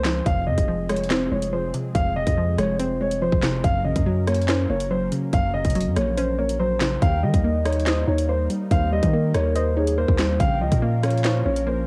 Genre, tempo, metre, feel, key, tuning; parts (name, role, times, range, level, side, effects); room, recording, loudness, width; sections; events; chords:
hip hop, drill; 142 BPM; 4/4; half-time; F minor; A4 = 438 Hz
dark grand piano; melody; 0.0-11.8 s; C5 to F5; -28 LUFS; equal; cassette tape
hollow square pluck; accompaniment; 0.0-11.9 s; F2 to Eb5; -29 LUFS; equal; chorus, cassette tape
warm analog pad; sustained chords; 0.0-11.9 s; F3 to Bb4; -36 LUFS; equal; chorus, cassette tape
long sustained 808-style bass; bass; 0.0-11.9 s; F1 to Eb3; -27 LUFS; equal
drill drum kit; drums; 0.0-11.7 s; handclaps, hi-hat, kick drum, rim click, snare drum; -27 LUFS; equal; cassette tape
soft octave-layered synth lead; second line; 7.0-11.6 s; Ab4 to G5; -33 LUFS; equal; chorus, phaser, cassette tape, tape echo
digital ambience; home recording on cassette; -22 LUFS; mono
0.3-11.9 A section
0.3 Fm; 3.6 Gb; 7.0 Eb; 10.4 Bbm